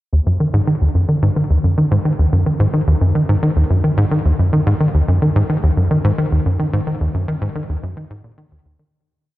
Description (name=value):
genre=ambient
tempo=109 BPM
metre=4/4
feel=straight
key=Eb minor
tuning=A4 = 440 Hz
part: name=tight sequencer bass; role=solo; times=0.1-8.8 s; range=Eb2 to Eb3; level=-14 LUFS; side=equal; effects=analog chorus
room=wet lush hall reverb, RT60 2.8 s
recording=worn, warbling old tape, cassette tape, warbly pitch drift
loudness=-14 LUFS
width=side -16 dB against mid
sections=0.1-8.9 A section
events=fade-out 6.0-8.9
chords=none